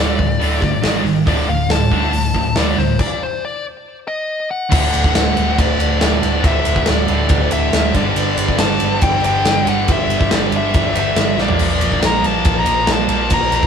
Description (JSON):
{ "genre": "hard rock", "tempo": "139 BPM", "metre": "4/4", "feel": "straight", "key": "unclear", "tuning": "A4 = 440 Hz", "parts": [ { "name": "nasal lead guitar with a parked wah", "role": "melody", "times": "0.0-13.7 s", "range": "C5 to Bb5", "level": "-20 LUFS", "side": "left 4 dB", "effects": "overdrive, tape echo" }, { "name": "distorted electric guitar", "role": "riff", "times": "0.0-13.7 s", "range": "D2 to Bb3", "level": "-22 LUFS", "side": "right 8 dB", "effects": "overdrive" }, { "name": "scooped high-gain guitar", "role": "riff", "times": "0.0-13.7 s", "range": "D2 to Bb3", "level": "-22 LUFS", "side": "left 7 dB", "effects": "distortion" }, { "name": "hollow-body short-scale picked electric bass", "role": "bass", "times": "0.0-13.7 s", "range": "D1 to D2", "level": "-21 LUFS", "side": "equal", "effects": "none" }, { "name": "big rock drum kit", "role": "drums", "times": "0.2-13.7 s", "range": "crash cymbal, hi-hat, kick drum, ride cymbal, snare drum, toms", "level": "-18 LUFS", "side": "right 1 dB", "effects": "none" } ], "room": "light reverb", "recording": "band playing live in one room", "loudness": "-14 LUFS", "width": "side -7 dB against mid", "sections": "0.0-4.7 A section; 4.7-13.7 B section", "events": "lead electric guitar solo 0.0-4.7; stop 3.0-4.7; drum fill 11.4", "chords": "0.0 D5; 0.8 G#5; 1.3 D5; 3.9 N.C.; 4.7 D; 7.9 G5; 11.4 Bb", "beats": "0.41 0.84 | 1.27 1.70 2.13 2.56 | 2.99 3.42 3.85 4.29 | 4.72 5.15 5.58 6.01 | 6.44 6.87 7.30 7.73 | 8.16 8.60 9.03 9.46 | 9.88 10.31 10.74 11.17 | 11.60 12.03 12.45 12.88 | 13.31" }